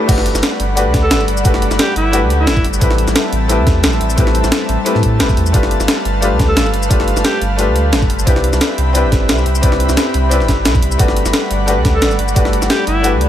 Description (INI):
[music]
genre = liquid drum and bass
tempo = 176 BPM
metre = 4/4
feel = swing 54% on 16ths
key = G major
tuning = A4 = 440 Hz
[part]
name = bright baby grand piano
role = accompaniment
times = 0.0-13.3 s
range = A3 to B4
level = -19 LUFS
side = left 4 dB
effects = ping-pong delay
[part]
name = airy breathy pad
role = sustained chords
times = 0.3-13.3 s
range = G3 to B5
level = -21 LUFS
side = equal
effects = chorus
[part]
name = warm sub bass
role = bass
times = 0.1-13.3 s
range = E1 to A2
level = -17 LUFS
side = right 1 dB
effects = tube saturation
[part]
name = breakbeat sampler-style drum kit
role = drums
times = 0.1-13.3 s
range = crash cymbal, hi-hat, shaker, snare drum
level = -18 LUFS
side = equal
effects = high-pass filter on hats, high-pass filter on snare, high-pass filter on cymbals, high-pass filter on perc
[part]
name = electronic kick drum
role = drums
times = 0.1-12.4 s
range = none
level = -15 LUFS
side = right 1 dB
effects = high-pass filter on kick
[part]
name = bright alto saxophone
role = melody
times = 1.0-2.6, 6.5-7.4, 11.9-13.1 s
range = E4 to A4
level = -21 LUFS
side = equal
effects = dub echo
[sound]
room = little or no reverb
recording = none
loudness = -11 LUFS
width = side -11 dB against mid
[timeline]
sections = 0.1-13.3 A section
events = drop 0.1-13.3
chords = 0.1 Gmaj7; 2.8 Am7; 5.5 G9; 8.3 Cmaj7; 11.0 Gmaj7